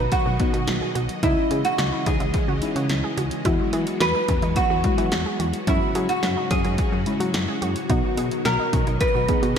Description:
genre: synth-pop.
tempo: 108 BPM.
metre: 4/4.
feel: straight.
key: unclear.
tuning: A4 = 438 Hz.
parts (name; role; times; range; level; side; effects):
oud; melody; 0.0-9.6 s; E4 to B4; -25 LUFS; right 2 dB; ping-pong delay.
string machine, violas; sustained chords; 0.0-9.6 s; G#2 to D#5; -30 LUFS; equal; ensemble chorus.
wide unison pluck; arpeggios; 0.0-9.6 s; C#4 to G#4; -32 LUFS; right 3 dB; analog chorus, ping-pong delay.
solid FM bass; bass; 0.0-9.6 s; B1 to F#3; -26 LUFS; equal; none.
punchy analog drum machine; drums; 0.1-9.6 s; hi-hat, kick drum, snare drum; -25 LUFS; equal; gated reverb.
muted felt-like synth keys; accompaniment; 0.4-9.6 s; G#3 to D#5; -28 LUFS; left 2 dB; chorus, phaser.
room: moderate lush hall reverb, RT60 2.1 s.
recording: bright 1980s-style digital production.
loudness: -20 LUFS.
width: side -7 dB against mid.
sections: 0.0-9.6 A section.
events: none.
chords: 0.0 B; 1.2 C#madd9; 3.5 Eadd9; 5.7 F#sus2; 7.9 B.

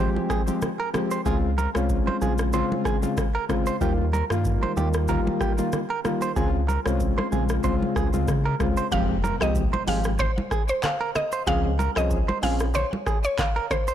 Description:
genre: afrobeats.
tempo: 94 BPM.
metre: 4/4.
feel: swing 55% on 16ths.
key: unclear.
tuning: A4 = 440 Hz.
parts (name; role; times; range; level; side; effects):
soft electric-piano-like synth keys; accompaniment; 0.0-12.7 s; Db3 to Ab4; -27 LUFS; left 2 dB; chorus.
direct-recorded clean electric guitar; riff; 0.0-13.9 s; G4 to C5; -30 LUFS; right 6 dB; tape echo.
round analog bass; bass; 0.0-12.8 s; F1 to Db3; -26 LUFS; equal; none.
congas; percussion; 0.2-13.9 s; none; -34 LUFS; right 2 dB; none.
booming analog drum machine; drums; 0.3-13.9 s; handclaps, hi-hat, kick drum, rim click, shaker; -28 LUFS; equal; none.
mallet-like synth pluck; melody; 8.9-13.9 s; C5 to F5; -28 LUFS; equal; chorus, tape echo.
impact; sound effects; 8.9-11.5 s; none; -36 LUFS; left 1 dB; none.
room: light reverb.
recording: blown-out, overdriven recording, overdrive.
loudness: -22 LUFS.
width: side -10 dB against mid.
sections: 0.0-8.9 A section; 8.9-13.9 B section.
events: impact 8.9-11.5.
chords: 0.0 Fmadd9; 1.3 Dbmaj7; 3.8 Ebadd9; 6.4 Dbmaj7; 8.9 Fmadd9; 11.5 Dbmaj7.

